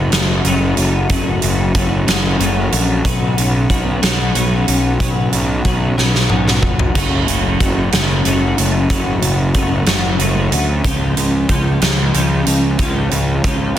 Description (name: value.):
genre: quiet-loud alternative rock.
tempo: 62 BPM (dotted quarters).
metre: 6/8.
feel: straight.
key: F# harmonic minor.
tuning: A4 = 435 Hz.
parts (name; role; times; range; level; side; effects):
twelve-string electric guitar; arpeggios; 0.0-13.8 s; F#2 to F#4; -19 LUFS; left 1 dB; ensemble chorus, digital delay.
fuzz picked electric bass; bass; 0.0-13.7 s; E#1 to D2; -17 LUFS; equal; overdrive.
huge arena drum kit; drums; 0.1-13.8 s; crash cymbal, hi-hat, kick drum, snare drum, toms; -18 LUFS; right 1 dB; none.
room: light reverb, small room ambience.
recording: dense, heavily limited modern master.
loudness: -13 LUFS.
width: side -11 dB against mid.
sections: 0.0-13.8 A section.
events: drum fill 6.0-7.0.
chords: 0.0 F#m; 3.1 Bsus2; 7.0 F#m; 10.9 C#.